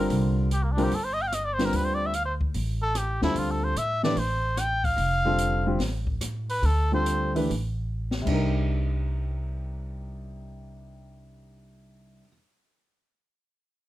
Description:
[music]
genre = modal jazz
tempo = 126-148 BPM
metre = 4/4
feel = swing 67% on 8ths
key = C dorian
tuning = A4 = 440 Hz
[part]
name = trumpet with cup mute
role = melody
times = 0.0-7.3 s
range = Bb3 to G5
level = -27 LUFS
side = equal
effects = none
[part]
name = warm baby grand piano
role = accompaniment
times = 0.0-12.3 s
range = C3 to B4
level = -28 LUFS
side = equal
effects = none
[part]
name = upright bass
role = bass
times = 0.0-12.2 s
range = F1 to A2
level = -28 LUFS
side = equal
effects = none
[part]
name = open jazz drum kit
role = drums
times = 0.1-8.3 s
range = crash cymbal, hi-hat, kick drum, rim click, snare drum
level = -34 LUFS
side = left 1 dB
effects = none
[sound]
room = little or no reverb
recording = close, detailed microphones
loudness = -24 LUFS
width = side -15 dB against mid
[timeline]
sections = 0.0-8.4 A section; 8.4-12.2 B section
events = muted trumpet solo 0.0-8.4; slowing down 5.0-8.4; drum fill 8.0-8.4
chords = 0.0 C7sus2; 1.7 Dm7; 8.2 Cm9

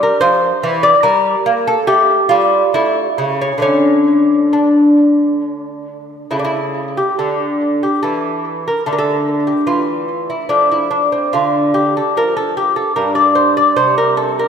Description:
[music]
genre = classical, baroque-style dance for lute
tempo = 66-75 BPM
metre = 3/4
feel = rubato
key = D minor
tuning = A4 = 439 Hz
[part]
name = lute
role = solo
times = 0.0-14.5 s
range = G2 to D5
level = -12 LUFS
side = equal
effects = tape echo
[sound]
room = wet lush hall reverb, RT60 1.8 s, small room ambience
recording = dreamy mix soaked in reverb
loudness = -12 LUFS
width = side -7 dB against mid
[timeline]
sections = 0.0-6.3 A section; 6.3-14.5 A section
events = none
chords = 0.2 F5; 1.0 Gm; 1.9 Fadd9; 2.7 A; 3.6 D5; 6.3 A/C#; 8.8 D5; 10.5 F; 11.3 Dm; 13.0 N.C.; 13.8 C5

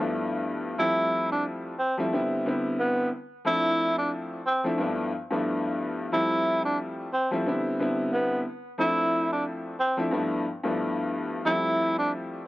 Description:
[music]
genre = hip hop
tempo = 90 BPM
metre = 4/4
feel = swing 56% on 16ths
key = unclear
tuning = A4 = 440 Hz
[part]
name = warm upright piano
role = accompaniment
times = 0.0-12.4 s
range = G2 to E4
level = -27 LUFS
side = left 1 dB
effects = high-pass filter, low-pass filter
[part]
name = breathy tenor saxophone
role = melody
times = 0.8-12.1 s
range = B3 to E4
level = -26 LUFS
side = right 1 dB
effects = high-pass filter, low-pass filter
[sound]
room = light reverb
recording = dry, gritty hardware recording, transformer saturation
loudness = -24 LUFS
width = side -18 dB against mid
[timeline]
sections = 0.0-12.5 A section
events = none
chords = 0.0 G13; 0.8 Fmaj9; 2.1 Cmaj9; 3.5 Dm9; 4.8 G13; 6.1 Fmaj9; 7.5 Cmaj9; 8.8 Dm9; 10.1 G13; 11.5 Fmaj9

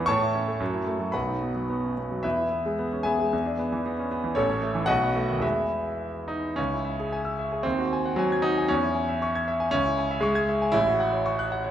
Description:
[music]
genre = classical, virtuoso piano study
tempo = 101-119 BPM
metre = 2/4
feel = rubato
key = E major, C# minor from 6.6 s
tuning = A4 = 442 Hz
[part]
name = clear concert grand piano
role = solo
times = 0.0-11.7 s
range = A1 to G#6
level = -24 LUFS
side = equal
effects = none
[sound]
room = wet recital hall reverb, RT60 1.3 s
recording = none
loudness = -24 LUFS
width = side -10 dB against mid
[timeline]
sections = 0.0-6.6 A section; 6.6-11.7 B section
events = none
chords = 0.1 A; 0.6 F#m7; 1.1 B; 2.2 E; 3.3 E7; 4.4 A; 4.9 B7; 5.4 E; 6.6 C#m; 7.6 G#7/D#; 8.7 C#m/E; 9.7 C#m; 10.7 F#m/A

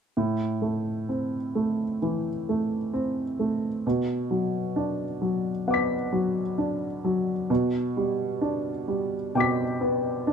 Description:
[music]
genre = neoclassical minimalist piano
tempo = 65 BPM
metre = 4/4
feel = rubato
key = A dorian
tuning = A4 = 440 Hz
[part]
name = warm upright piano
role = solo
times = 0.2-10.3 s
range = A2 to B6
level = -24 LUFS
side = equal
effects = none
[sound]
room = light reverb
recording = minimal, uncompressed stereo recording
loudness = -25 LUFS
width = side -7 dB against mid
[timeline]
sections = 0.1-10.3 A section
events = none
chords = 0.1 Am; 3.8 Bm; 7.5 G/B

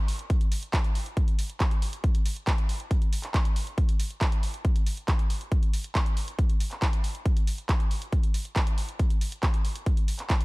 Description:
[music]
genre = trance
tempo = 138 BPM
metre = 4/4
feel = straight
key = none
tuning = none
[part]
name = punchy analog drum machine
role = drums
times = 0.1-10.4 s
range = handclaps, hi-hat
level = -34 LUFS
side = right 1 dB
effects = sidechain pumping on hats, sidechain pumping on cymbals
[part]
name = electronic kick drum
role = drums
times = 0.3-10.4 s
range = none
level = -24 LUFS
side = equal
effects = none
[sound]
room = little or no reverb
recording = dark, warm production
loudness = -24 LUFS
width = side -23 dB against mid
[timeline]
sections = 0.0-10.4 A section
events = none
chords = none

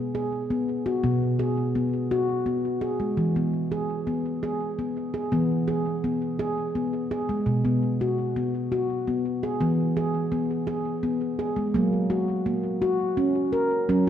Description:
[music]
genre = world meditative, meditative tuned percussion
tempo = 56 BPM (dotted quarters)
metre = 6/8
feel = straight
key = E lydian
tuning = A4 = 440 Hz
[part]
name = handpan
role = solo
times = 0.0-14.1 s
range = B2 to A#4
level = -23 LUFS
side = equal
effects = tape echo
[sound]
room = wet concert hall reverb, RT60 2.0 s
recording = none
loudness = -23 LUFS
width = side -9 dB against mid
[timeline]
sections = 0.0-11.8 A section; 11.8-14.1 B section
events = none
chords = 0.0 B5; 3.2 E; 7.5 B5; 9.6 E; 11.8 F#

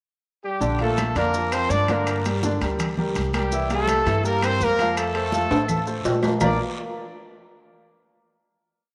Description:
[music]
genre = latin, salsa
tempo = 166 BPM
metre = 4/4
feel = straight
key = Bb major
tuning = A4 = 440 Hz
[part]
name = clear horn section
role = melody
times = 0.4-6.6 s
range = G3 to D5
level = -27 LUFS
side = equal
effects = none
[part]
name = clear grand piano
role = accompaniment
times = 0.6-6.6 s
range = D3 to Bb5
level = -28 LUFS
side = equal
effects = none
[part]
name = upright bass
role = bass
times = 0.6-6.6 s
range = Bb1 to Bb2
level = -30 LUFS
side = equal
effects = none
[part]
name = congas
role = percussion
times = 0.6-6.5 s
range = none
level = -33 LUFS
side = equal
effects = none
[part]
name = guiro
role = percussion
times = 0.6-6.5 s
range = none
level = -43 LUFS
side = equal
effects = none
[part]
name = maracas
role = percussion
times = 0.6-6.5 s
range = none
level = -42 LUFS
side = equal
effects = none
[part]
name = timbales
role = percussion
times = 0.8-6.5 s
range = none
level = -31 LUFS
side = equal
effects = none
[part]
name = claves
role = percussion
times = 1.0-6.5 s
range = none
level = -42 LUFS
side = equal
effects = none
[sound]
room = wet echo chamber reverb, RT60 2.2 s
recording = none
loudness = -23 LUFS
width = mono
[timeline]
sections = 0.0-0.6 pickup bar; 0.6-6.4 verse; 6.4-7.9 final chord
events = drum fill 5.5-6.4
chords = 0.0 N.C.; 0.6 Bb; 2.1 Gm; 3.5 C7; 5.0 F; 6.4 Bb

